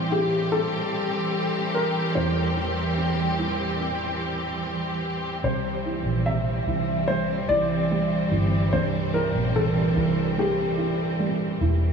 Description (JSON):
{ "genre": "pop ballad", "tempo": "73 BPM", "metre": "4/4", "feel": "straight", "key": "unclear", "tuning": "A4 = 443 Hz", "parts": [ { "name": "dark upright piano", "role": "accompaniment", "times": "0.0-11.9 s", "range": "E2 to E4", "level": "-30 LUFS", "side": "right 4 dB", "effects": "wide subtle chorus" }, { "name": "rich studio string section", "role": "sustained chords", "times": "0.0-11.9 s", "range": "E3 to G4", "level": "-26 LUFS", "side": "equal", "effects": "none" }, { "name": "warm grand piano", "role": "melody", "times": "0.1-11.6 s", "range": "G4 to E5", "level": "-27 LUFS", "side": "left 2 dB", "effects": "analog delay" }, { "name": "vintage muted fingered electric bass", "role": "bass", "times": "5.4-11.9 s", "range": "E1 to C2", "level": "-26 LUFS", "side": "right 1 dB", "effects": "none" } ], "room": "wet huge ambient reverb, RT60 9.5 s", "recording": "dreamy mix soaked in reverb, studio ambience", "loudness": "-22 LUFS", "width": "side -6 dB against mid", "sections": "0.0-5.4 A section; 5.4-11.9 B section", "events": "none", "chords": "0.0 Am7; 5.4 C" }